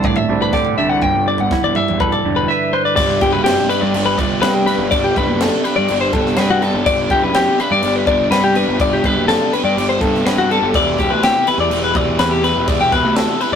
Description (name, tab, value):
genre	math rock and midwest emo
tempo	124 BPM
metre	4/4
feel	straight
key	G major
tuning	A4 = 440 Hz
part	clean electric guitar	accompaniment	0.0-4.9 s	G2 to B4	-19 LUFS	right 6 dB	none
part	twelve-string electric guitar	arpeggios	0.0-13.6 s	F#4 to G5	-16 LUFS	left 4 dB	none
part	fuzz picked electric bass	bass	0.0-13.6 s	E1 to D3	-21 LUFS	equal	overdrive
part	crisp fusion drum kit	drums	0.0-13.5 s	crash cymbal, kick drum, snare drum, toms	-22 LUFS	right 1 dB	none
part	biting overdriven guitar	riff	3.0-13.6 s	E3 to G4	-20 LUFS	right 2 dB	none
room	light reverb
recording	rough rehearsal-room recording, tube saturation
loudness	-13 LUFS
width	side -8 dB against mid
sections	0.0-3.0 A section; 3.0-13.6 B section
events	none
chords	0.0 D7sus4; 1.0 G69; 3.0 Gmaj7; 10.7 Em7